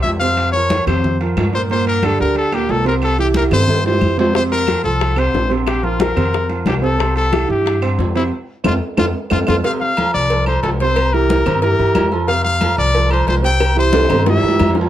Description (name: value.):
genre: latin, salsa.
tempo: 182 BPM.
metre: 4/4.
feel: straight.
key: F major.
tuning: A4 = 438 Hz.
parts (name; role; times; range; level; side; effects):
bright trumpet; melody; 0.0-14.7 s; E4 to G5; -19 LUFS; left 2 dB; none.
clear concert grand piano; accompaniment; 0.0-14.9 s; Bb2 to C5; -20 LUFS; right 4 dB; none.
upright bass; bass; 0.0-14.9 s; Bb1 to G2; -19 LUFS; equal; none.
congas; percussion; 0.0-14.9 s; none; -24 LUFS; left 2 dB; none.
timbales and agogo bells; percussion; 0.0-14.9 s; none; -23 LUFS; right 1 dB; none.
claves; percussion; 0.4-14.8 s; none; -31 LUFS; right 1 dB; none.
bongos and cowbell; percussion; 4.3-14.8 s; none; -23 LUFS; left 4 dB; none.
room: moderate studio reverb, RT60 0.6 s.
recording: none.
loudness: -14 LUFS.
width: side -12 dB against mid.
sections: 0.0-9.6 A section; 9.6-14.9 B section.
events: drum fill 3.5-4.3, 9.0-9.6, 13.6-14.9; band accent 8.3-9.6.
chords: 0.4 Bbmadd9/F; 1.7 Gm; 3.0 C; 4.3 F; 5.7 Bbsus2; 7.0 C6; 8.3 F; 11.0 C7; 12.3 F; 13.6 C.